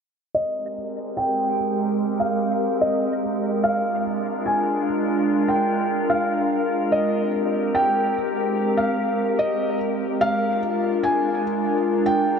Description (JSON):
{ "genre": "hip hop", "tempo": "146 BPM", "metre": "4/4", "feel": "half-time", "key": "Ab lydian", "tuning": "A4 = 439 Hz", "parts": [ { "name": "felt-muted upright piano", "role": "melody", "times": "0.3-12.4 s", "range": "Eb5 to Ab5", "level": "-24 LUFS", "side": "equal", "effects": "low-pass filter, tape echo" }, { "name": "glassy FM pad", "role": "sustained chords", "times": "0.7-12.4 s", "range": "Ab3 to Bb4", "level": "-22 LUFS", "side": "equal", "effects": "ensemble chorus, built-in reverb, low-pass filter" } ], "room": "wet huge ambient reverb, RT60 6.0 s", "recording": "none", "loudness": "-20 LUFS", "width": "side -6 dB against mid", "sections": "0.3-12.4 A section", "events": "filter sweep 0.3-12.4", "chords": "0.3 Abmaj9; 3.6 Bb7; 6.9 Abmaj9; 10.2 Bb7" }